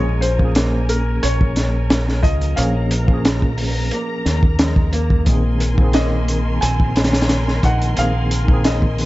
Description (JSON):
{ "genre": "trip hop", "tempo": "89 BPM", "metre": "4/4", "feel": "straight", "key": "Bb minor", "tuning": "A4 = 440 Hz", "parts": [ { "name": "felt-muted upright piano", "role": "melody", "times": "0.0-9.1 s", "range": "Bb4 to Ab5", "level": "-26 LUFS", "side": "left 1 dB", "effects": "vintage 12-bit sampler grit, tape echo" }, { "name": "mellow tine electric piano", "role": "accompaniment", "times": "0.0-9.1 s", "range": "Eb3 to Ab4", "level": "-25 LUFS", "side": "equal", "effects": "medium tremolo, harmonic tremolo" }, { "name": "dark symphonic string section", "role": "sustained chords", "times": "0.0-9.1 s", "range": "Bb4 to C6", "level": "-30 LUFS", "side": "left 1 dB", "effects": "none" }, { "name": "nylon-string guitar", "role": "arpeggios", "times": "0.0-8.3 s", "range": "Ab3 to F4", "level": "-30 LUFS", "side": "right 2 dB", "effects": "tape echo" }, { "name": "deep dub fingered electric bass", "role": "bass", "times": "0.0-9.1 s", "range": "Bb1 to Eb2", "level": "-19 LUFS", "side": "equal", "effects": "tube saturation" }, { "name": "flickering grainy texture", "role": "texture", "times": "1.7-9.1 s", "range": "Bb3 to Bb4", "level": "-35 LUFS", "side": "left 2 dB", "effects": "none" }, { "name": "crunchy breakbeat drum kit", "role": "drums", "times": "0.2-9.1 s", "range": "hi-hat, kick drum, snare drum", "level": "-18 LUFS", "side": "equal", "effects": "none" } ], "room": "small room reverb", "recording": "vinyl crackle, nothing above 7.8 kHz", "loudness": "-15 LUFS", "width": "side -18 dB against mid", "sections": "0.0-9.1 A section", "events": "none", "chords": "0.0 Bbm7; 5.3 Abadd9/Bb" }